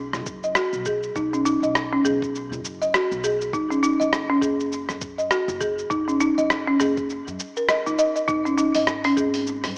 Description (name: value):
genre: organic downtempo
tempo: 101 BPM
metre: 4/4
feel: swing 58% on 16ths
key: unclear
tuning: A4 = 442 Hz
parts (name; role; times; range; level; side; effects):
- upright bass; bass; 0.0-9.8 s; F#1 to Ab2; -37 LUFS; equal; sidechain pumping
- dusty soul sampler-style drum kit; drums; 0.1-9.7 s; hi-hat, rim click, shaker; -26 LUFS; equal; none
- electronic kick drum; drums; 0.3-9.3 s; none; -37 LUFS; equal; none
- folk marimba with medium hard mallets; arpeggios; 0.4-9.3 s; Db4 to D#5; -21 LUFS; equal; tape echo
- udu; percussion; 2.0-9.3 s; none; -49 LUFS; equal; none
room: moderate echo chamber reverb, RT60 2.4 s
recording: worn, warbling old tape, cassette tape, warbly pitch drift, small speaker sound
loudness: -20 LUFS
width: side -39 dB against mid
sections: 0.0-9.8 A section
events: none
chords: 0.0 B; 3.5 N.C.; 8.3 Ab5